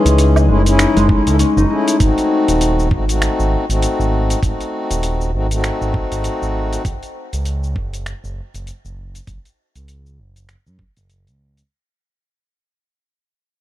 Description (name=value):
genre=organic downtempo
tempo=99 BPM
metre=4/4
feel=swing 58% on 16ths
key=unclear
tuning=A4 = 440 Hz
part: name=pedal harmonium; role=accompaniment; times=0.0-6.8 s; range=E3 to A4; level=-20 LUFS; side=left 2 dB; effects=sidechain pumping, ping-pong delay
part: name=concert harp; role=arpeggios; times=0.0-4.4 s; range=G#3 to G#4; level=-17 LUFS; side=left 3 dB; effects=ping-pong delay
part: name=smooth gliding synth bass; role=bass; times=0.1-11.6 s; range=D#1 to F#2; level=-18 LUFS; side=right 1 dB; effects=sidechain pumping
part: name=dusty soul sampler-style drum kit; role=drums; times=0.1-11.7 s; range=finger snaps, hi-hat, shaker, woodblock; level=-24 LUFS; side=equal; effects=overdrive, small room ambience
part: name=electronic kick drum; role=drums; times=1.1-10.9 s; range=none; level=-18 LUFS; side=right 1 dB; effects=overdrive, small room ambience
room=little or no reverb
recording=dark, warm production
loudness=-14 LUFS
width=side -14 dB against mid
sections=0.0-2.0 A section; 2.0-11.7 B section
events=fade-out 2.0-11.7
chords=0.0 F#m9; 2.0 G#7b9; 6.8 F#5